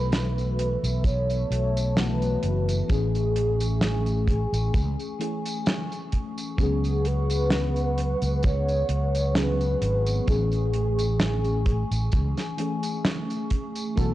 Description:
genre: vaporwave.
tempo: 65 BPM.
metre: 4/4.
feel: swing 54% on 16ths.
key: A major.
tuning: A4 = 441 Hz.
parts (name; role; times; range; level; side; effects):
warm velvety synth lead; melody; 0.0-14.1 s; G#4 to C#5; -30 LUFS; equal; chorus, tape echo.
FM electric piano with soft pad layer; accompaniment; 0.0-14.1 s; E3 to G#4; -32 LUFS; left 2 dB; lush chorus, analog delay.
warbly tape-like pad; sustained chords; 0.0-14.1 s; A3 to C#6; -36 LUFS; equal; chorus, built-in reverb.
fretless electric bass; bass; 0.0-14.1 s; F#1 to C#2; -25 LUFS; equal; none.
damped 70s drum kit; drums; 0.1-14.1 s; hi-hat, snare drum, tambourine; -29 LUFS; right 1 dB; studio reverb.
kick drum; drums; 1.0-14.1 s; none; -23 LUFS; equal; studio reverb.
room: small room ambience.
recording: dry, gritty hardware recording, cassette tape.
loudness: -22 LUFS.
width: side -15 dB against mid.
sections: 0.0-14.1 A section.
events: none.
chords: 0.0 B7sus4; 2.9 Amaj7; 6.6 C#7sus4; 10.3 Amaj7.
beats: 0.13 1.05 1.97 | 2.90 3.82 4.74 5.67 | 6.59 7.51 8.44 9.36 | 10.28 11.21 12.13 13.05 | 13.97.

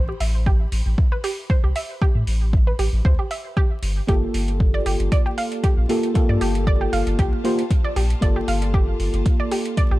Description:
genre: deep house.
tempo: 116 BPM.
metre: 4/4.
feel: swing 54% on 16ths.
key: unclear.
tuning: A4 = 440 Hz.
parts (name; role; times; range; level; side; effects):
round analog bass; bass; 0.0-10.0 s; G1 to A2; -21 LUFS; equal; sidechain pumping.
bright studio string section; texture; 0.0-10.0 s; Bb3 to B5; -42 LUFS; left 1 dB; sidechain pumping.
analog pluck; arpeggios; 0.1-10.0 s; G4 to F5; -28 LUFS; right 2 dB; chorus, sidechain pumping, dub echo.
electronic hi-hat; drums; 0.2-9.9 s; none; -34 LUFS; right 1 dB; overdrive, studio reverb.
electronic kick drum; drums; 0.5-9.9 s; none; -18 LUFS; equal; overdrive, studio reverb.
mellow FM electric piano; stabs; 4.1-10.0 s; Bb3 to C5; -24 LUFS; equal; chorus, sidechain pumping, dub echo.
room: little or no reverb.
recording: dark, warm production, vinyl crackle.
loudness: -18 LUFS.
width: side -17 dB against mid.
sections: 0.0-10.0 A section.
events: fade-in on string section 0.0-10.0.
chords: 0.0 Am9; 3.8 Gm9.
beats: 0.46 0.98 1.50 | 2.02 2.53 3.05 3.57 | 4.08 4.60 5.12 5.64 | 6.15 6.67 7.19 7.71 | 8.22 8.74 9.26 9.77.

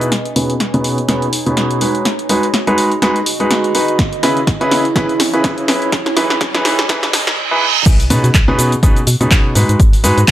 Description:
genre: piano house.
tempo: 124 BPM.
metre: 4/4.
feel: swing 57% on 16ths.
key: unclear.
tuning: A4 = 440 Hz.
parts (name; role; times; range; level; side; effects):
clear grand piano; riff; 0.0-10.2 s; B2 to B4; -16 LUFS; equal; sidechain pumping, low-pass filter, dub echo.
punchy analog drum machine; drums; 0.0-10.3 s; crash cymbal, handclaps, hi-hat, shaker, snare drum; -17 LUFS; equal; none.
warbly tape-like pad; texture; 0.0-7.4 s; C#4 to G#5; -22 LUFS; right 2 dB; chorus, built-in reverb, sidechain pumping.
riser and reverse cymbal; sound effects; 2.2-7.9 s; none; -22 LUFS; right 6 dB; none.
electronic kick drum; drums; 4.0-10.3 s; none; -12 LUFS; equal; none.
organ-like FM bass; bass; 7.9-10.3 s; G#1 to B2; -15 LUFS; equal; sidechain pumping.
room: light reverb, digital ambience.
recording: high-pass filter.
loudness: -12 LUFS.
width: side -13 dB against mid.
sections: 0.1-7.9 A section; 7.9-10.3 B section.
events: build-up 0.1-7.9; drum fill 0.1-7.4; filter sweep on grand piano 0.1-7.9; filter sweep 0.1-7.9; riser 2.2-7.4; reverse cymbal 6.9-7.9; drop 7.9-10.3.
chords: 0.1 B69; 1.8 G#m7; 4.0 C#m7; 5.9 Emaj7; 7.9 B69; 9.6 G#m7.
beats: | 0.12 0.60 1.09 1.57 | 2.05 2.54 3.02 3.51 | 3.99 4.47 4.96 5.44 | 5.92 6.41 6.89 7.38 | 7.86 8.34 8.83 9.31 | 9.80 10.28.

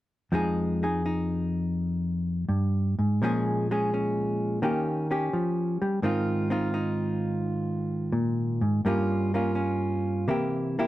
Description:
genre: solo jazz.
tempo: 84 BPM.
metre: 4/4.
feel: swing 68% on 8ths, rubato.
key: F minor.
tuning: A4 = 440 Hz.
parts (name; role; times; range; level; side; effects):
hollow-body jazz guitar; solo; 0.3-10.9 s; F2 to Ab4; -25 LUFS; equal; none.
room: light reverb.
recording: dark, warm production.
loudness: -25 LUFS.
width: side -15 dB against mid.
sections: 0.3-10.9 A section.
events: none.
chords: 0.3 Fm7; 3.2 Bbm7; 4.6 Eb7; 6.0 Ab6; 8.8 Gm7b5; 10.3 C7.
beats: | 0.32 1.05 1.78 2.49 | 3.21 3.92 4.62 5.33 | 6.02 6.72 7.42 8.13 | 8.84 9.56 10.29.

